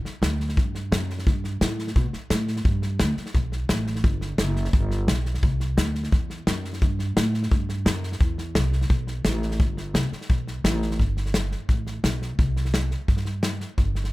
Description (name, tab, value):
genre	honky-tonk and classic country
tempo	173 BPM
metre	4/4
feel	straight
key	G major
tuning	A4 = 440 Hz
part	upright bass	bass	0.0-14.1 s	F#1 to B2	-25 LUFS	equal	none
part	natural country drum kit	drums	0.1-14.1 s	hi-hat, kick drum, snare drum	-24 LUFS	left 1 dB	none
room	little or no reverb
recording	none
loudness	-22 LUFS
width	side -19 dB against mid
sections	0.0-11.0 A section; 11.0-14.1 B section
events	none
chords	none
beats	0.22 0.57 0.92 | 1.26 1.61 1.96 2.31 | 2.65 3.00 3.35 3.69 | 4.04 4.39 4.74 5.08 | 5.43 5.78 6.12 6.47 | 6.82 7.17 7.51 7.86 | 8.21 8.56 8.90 9.25 | 9.60 9.95 10.30 10.64 | 10.99 11.34 11.69 12.04 | 12.39 12.74 13.09 13.44 | 13.78